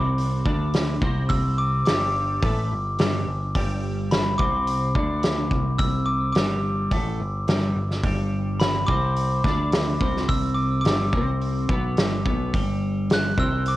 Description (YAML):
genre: indie rock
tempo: 107 BPM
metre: 4/4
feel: straight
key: G major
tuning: A4 = 441 Hz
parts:
  - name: glockenspiel with hard plastic mallets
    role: melody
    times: 0.0-13.8 s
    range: B5 to F#6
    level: -27 LUFS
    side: left 1 dB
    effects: analog delay
  - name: twelve-string electric guitar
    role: riff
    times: 0.0-13.8 s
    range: G2 to D4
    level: -27 LUFS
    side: equal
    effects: double-tracked left and right, cassette tape
  - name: picked electric bass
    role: bass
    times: 0.0-13.8 s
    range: G1 to D2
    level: -27 LUFS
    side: equal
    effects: none
  - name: loose indie drum kit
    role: drums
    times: 0.2-13.8 s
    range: hi-hat, kick drum, snare drum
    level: -24 LUFS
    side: equal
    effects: none
room: light reverb, studio ambience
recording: home recording on cassette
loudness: -20 LUFS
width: side -16 dB against mid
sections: 0.0-13.8 A section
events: none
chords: 0.0 G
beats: 0.18 0.74 | 1.30 1.87 2.43 2.99 | 3.55 4.12 4.68 5.24 | 5.80 6.36 6.92 7.48 | 8.04 8.61 9.17 9.73 | 10.29 10.85 11.41 11.97 | 12.53 13.09 13.65